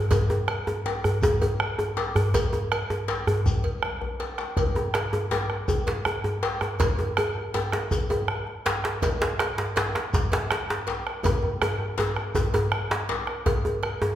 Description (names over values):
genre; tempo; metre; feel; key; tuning
west african traditional, West African drum ensemble; 108 BPM (dotted quarters); 12/8; straight; none; none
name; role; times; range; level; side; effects
bombo; percussion; 0.1-14.1 s; none; -29 LUFS; right 1 dB; none
cowbell; percussion; 0.1-14.0 s; none; -33 LUFS; right 3 dB; none
djembe; percussion; 0.1-13.7 s; none; -31 LUFS; left 3 dB; none
djembe; percussion; 0.1-14.2 s; none; -26 LUFS; equal; none
shekere; percussion; 0.1-12.8 s; none; -38 LUFS; left 1 dB; none
room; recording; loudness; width
wet recital hall reverb, RT60 1.3 s; recorded in a church or concert hall; -23 LUFS; side -11 dB against mid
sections
0.0-13.5 A section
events
drum fill 3.6-4.6, 11.2-13.5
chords
none